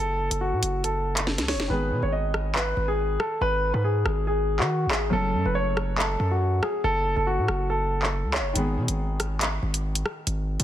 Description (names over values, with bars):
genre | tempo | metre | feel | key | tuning
hip hop, drill | 140 BPM | 4/4 | half-time | G# phrygian | A4 = 440 Hz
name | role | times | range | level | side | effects
warm baby grand piano | melody | 0.0-8.5 s | F#4 to D#5 | -26 LUFS | equal | low-pass filter, digital delay
distorted 808-style bass | bass | 0.0-10.6 s | F#1 to D#3 | -27 LUFS | equal | distortion
drill drum kit | drums | 0.3-10.6 s | handclaps, hi-hat, rim click, snare drum | -28 LUFS | equal | none
felt-muted upright piano | accompaniment | 1.7-10.6 s | D#3 to A4 | -32 LUFS | equal | low-pass filter
room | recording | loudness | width
light reverb, small room ambience | dense, heavily limited modern master | -23 LUFS | side -12 dB against mid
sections
0.0-10.6 A section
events
drum fill 1.3-1.7; hi-hats muted 1.7-8.6; break 8.6-10.6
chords
0.0 F#m; 1.7 G#m; 5.1 F#m; 8.6 G#m